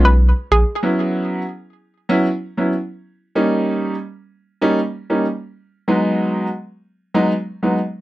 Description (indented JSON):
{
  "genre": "dancehall",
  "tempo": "95 BPM",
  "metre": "4/4",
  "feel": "straight",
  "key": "unclear",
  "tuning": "A4 = 440 Hz",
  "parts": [
    { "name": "clear baby grand piano", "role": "accompaniment", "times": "0.0-7.8 s", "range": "F#3 to E4", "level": "-17 LUFS", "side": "equal", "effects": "none" },
    { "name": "saturated sub bass", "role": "bass", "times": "0.0-0.6 s", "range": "A#1 to B1", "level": "-13 LUFS", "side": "equal", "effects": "none" },
    { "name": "hollow square pluck", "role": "melody", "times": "0.1-0.7 s", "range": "G#4 to B4", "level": "-19 LUFS", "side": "right 1 dB", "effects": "chorus, digital delay" }
  ],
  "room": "little or no reverb",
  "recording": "none",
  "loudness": "-17 LUFS",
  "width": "side -16 dB against mid",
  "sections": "0.8-8.0 A section",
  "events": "none",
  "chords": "0.0 C#7(no3) (rootless); 0.8 F#7sus4; 3.4 D#7; 5.9 G#m7",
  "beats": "0.20 | 0.83 1.46 2.09 2.73 | 3.36 3.99 4.62 5.25 | 5.88 6.51 7.15"
}